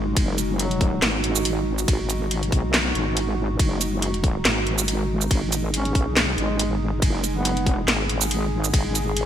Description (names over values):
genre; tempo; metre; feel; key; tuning
deep dubstep; 140 BPM; 4/4; swing 55% on 16ths, half-time; G# minor; A4 = 440 Hz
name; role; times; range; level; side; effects
dark analog pad; sustained chords; 0.0-9.3 s; G#3 to G#4; -28 LUFS; right 2 dB; lush chorus
wobble bass; bass; 0.0-9.3 s; F#1 to B1; -25 LUFS; equal; chorus
electronic kick drum; drums; 0.2-8.8 s; none; -21 LUFS; equal; none
garage drum kit; drums; 0.2-9.3 s; hi-hat, ride cymbal, shaker, snare drum; -24 LUFS; right 1 dB; gated reverb
warm duduk; melody; 0.6-1.0, 5.7-7.8 s; F#3 to C#4; -32 LUFS; equal; dub echo
room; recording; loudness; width
light reverb, digital ambience; bright 1980s-style digital production; -20 LUFS; side -10 dB against mid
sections
0.0-9.3 A section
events
none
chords
0.0 G#5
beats
| 0.17 0.59 1.02 1.45 | 1.88 2.31 2.74 3.17 | 3.59 4.02 4.45 4.88 | 5.31 5.74 6.17 6.59 | 7.02 7.45 7.88 8.31 | 8.74 9.17